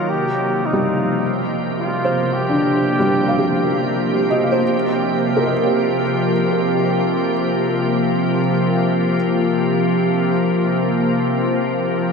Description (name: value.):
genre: ambient.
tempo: 53 BPM.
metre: 4/4.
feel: straight.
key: unclear.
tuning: A4 = 440 Hz.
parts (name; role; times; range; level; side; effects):
warm flugelhorn; melody; 0.0-4.0 s; Eb4 to G4; -24 LUFS; equal; diffuse ambient delay.
soft additive organ-like pad; sustained chords; 0.0-12.1 s; C3 to G4; -17 LUFS; equal; ensemble chorus, built-in reverb.
felt-muted upright piano; arpeggios; 0.7-9.2 s; D3 to F5; -22 LUFS; equal; diffuse ambient delay.
room: wet huge ambient reverb, RT60 8.8 s.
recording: dark, warm production.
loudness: -16 LUFS.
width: side -5 dB against mid.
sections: 0.0-12.1 A section.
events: none.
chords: 0.1 Cm7; 9.2 C7sus4.